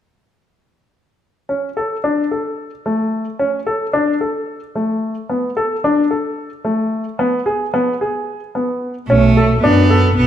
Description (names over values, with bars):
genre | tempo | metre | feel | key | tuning
contemporary instrumental, chamber music in an uneven meter | 221 BPM (eighths) | 7/8 | straight | B dorian | A4 = 441 Hz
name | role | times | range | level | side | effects
clear concert grand piano | arpeggios | 1.5-10.3 s | A3 to A4 | -17 LUFS | left 1 dB | none
clear cello | melody | 9.1-10.3 s | A3 to B3 | -14 LUFS | right 4 dB | none
warm double bass | bass | 9.1-10.3 s | B1 to F#2 | -14 LUFS | equal | none
room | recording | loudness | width
moderate recital hall reverb, RT60 1.4 s | none | -15 LUFS | side -10 dB against mid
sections
1.5-9.1 A section; 9.1-10.3 B section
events
none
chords
1.5 N.C.; 7.2 G#m/B; 9.1 Bm9